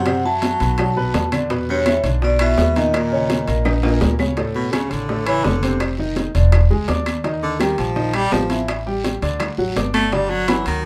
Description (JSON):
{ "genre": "Afro-Cuban jazz", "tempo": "167 BPM", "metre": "4/4", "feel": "straight", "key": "unclear", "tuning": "A4 = 440 Hz", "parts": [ { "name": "vibraphone with medium hard mallets", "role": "melody", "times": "0.0-4.0 s", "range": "C#5 to A5", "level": "-24 LUFS", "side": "equal", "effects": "none" }, { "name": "edgy baritone saxophone", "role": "second line", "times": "0.0-10.9 s", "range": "G2 to A3", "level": "-25 LUFS", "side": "equal", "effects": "none" }, { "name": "warm grand piano", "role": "accompaniment", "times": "0.0-10.8 s", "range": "A2 to D6", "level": "-26 LUFS", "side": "equal", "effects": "none" }, { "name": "upright bass", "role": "bass", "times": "0.0-10.9 s", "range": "E1 to F#2", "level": "-24 LUFS", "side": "equal", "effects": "none" }, { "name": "bongos", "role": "percussion", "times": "0.1-10.7 s", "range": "none", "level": "-30 LUFS", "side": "equal", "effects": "none" }, { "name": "claves", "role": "percussion", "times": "0.1-10.7 s", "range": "none", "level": "-34 LUFS", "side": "equal", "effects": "none" }, { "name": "congas", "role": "percussion", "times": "0.1-10.8 s", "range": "none", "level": "-29 LUFS", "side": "equal", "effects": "none" }, { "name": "guiro", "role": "percussion", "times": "0.1-10.8 s", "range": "none", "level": "-39 LUFS", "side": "equal", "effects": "none" }, { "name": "timbales", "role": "percussion", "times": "0.1-10.8 s", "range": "none", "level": "-30 LUFS", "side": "equal", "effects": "none" } ], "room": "moderate club reverb, RT60 0.5 s", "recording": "none", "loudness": "-19 LUFS", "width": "mono", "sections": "0.0-4.4 A section; 4.4-10.9 B section", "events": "drum fill 3.7-4.4; baritone saxophone solo 4.4-10.9", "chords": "0.1 F#m7b5; 0.8 B5; 1.5 Em7; 2.9 Eb5; 4.4 D5; 5.8 F5; 6.5 E7; 7.2 Ebadd9; 8.7 A5; 9.4 D; 10.1 G5", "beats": "| 0.07 0.43 0.79 1.15 | 1.50 1.86 2.22 2.58 | 2.94 3.30 3.66 4.01 | 4.37 4.73 5.09 5.45 | 5.81 6.17 6.53 6.89 | 7.25 7.61 7.97 8.33 | 8.69 9.05 9.41 9.77 | 10.12 10.48 10.84" }